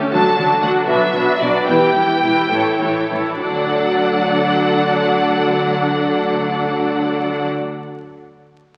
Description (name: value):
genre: quick classical-period movement for string orchestra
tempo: 64-83 BPM (dotted quarters)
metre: 6/8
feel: rubato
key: D major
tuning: A4 = 440 Hz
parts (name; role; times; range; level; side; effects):
- warm symphonic violin section; second line; 0.0-7.5 s; F#4 to D5; -22 LUFS; equal; none
- rich symphonic viola section; accompaniment; 0.0-7.5 s; E3 to E4; -22 LUFS; equal; none
- rich symphonic violin section; melody; 0.1-7.5 s; D5 to A5; -22 LUFS; equal; none
- rich symphonic cello section; bass; 0.1-7.5 s; E2 to D3; -27 LUFS; equal; none
- rich symphonic double bass section; bass; 0.1-7.5 s; E1 to D2; -31 LUFS; equal; none
room: wet scoring stage reverb, RT60 2.0 s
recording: very old 78 rpm record, vinyl crackle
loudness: -17 LUFS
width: mono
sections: 0.0-3.4 A section; 3.4-7.0 B section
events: slowing down 0.0-3.4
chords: 0.1 D; 0.9 Bm; 1.7 Em; 2.5 A7; 3.4 D